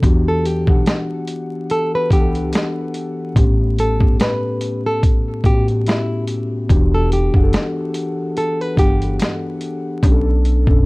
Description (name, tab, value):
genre	lo-fi hip hop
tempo	72 BPM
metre	4/4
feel	swing 56% on 16ths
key	E dorian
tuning	A4 = 440 Hz
part	muted felt-like synth keys	accompaniment	0.0-10.9 s	A2 to F#5	-21 LUFS	left 1 dB	chorus, cassette tape, low-pass filter
part	upright bass	bass	0.0-10.8 s	E1 to E2	-19 LUFS	equal	none
part	dusty soul sampler-style drum kit	drums	0.0-10.8 s	hi-hat, kick drum, snare drum	-16 LUFS	equal	none
part	nylon-string guitar	melody	0.3-9.2 s	E4 to B4	-22 LUFS	equal	low-pass filter, analog delay
room	light reverb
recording	dark, warm production, vinyl crackle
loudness	-15 LUFS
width	side -24 dB against mid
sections	0.0-10.9 A section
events	none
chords	0.0 Em9; 3.4 A7; 6.7 Em9; 10.0 Bm9